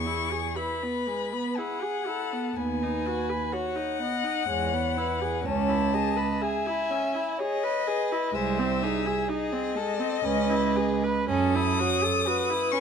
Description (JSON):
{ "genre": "classical, slow romantic movement for string quartet", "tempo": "62 BPM", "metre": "3/4", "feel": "uneven beats, rubato", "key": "E major", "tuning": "A4 = 438 Hz", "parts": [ { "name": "dark violin", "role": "melody", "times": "0.0-12.8 s", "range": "D#5 to D#6", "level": "-30 LUFS", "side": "left 10 dB", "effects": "none" }, { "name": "dark violin", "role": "second line", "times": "0.0-12.8 s", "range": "G#4 to E5", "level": "-32 LUFS", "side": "left 3 dB", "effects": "none" }, { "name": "rich viola", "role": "accompaniment", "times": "0.0-12.8 s", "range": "G#3 to B4", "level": "-30 LUFS", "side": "right 3 dB", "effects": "none" }, { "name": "warm cello", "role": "bass", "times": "0.0-12.1 s", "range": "B#1 to F#2", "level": "-30 LUFS", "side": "right 6 dB", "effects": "none" } ], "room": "light reverb", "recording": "close, detailed microphones", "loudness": "-25 LUFS", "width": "side -7 dB against mid", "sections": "0.0-12.8 A section", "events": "none", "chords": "0.0 E; 2.6 B/D#; 4.5 E; 5.5 C#m7; 8.4 G#/B#; 10.2 C#m7; 11.3 F#m7", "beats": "0.56 1.58 | 2.57 3.53 4.49 | 5.46 6.42 7.38 | 8.35 9.28 10.23 | 11.29 12.26" }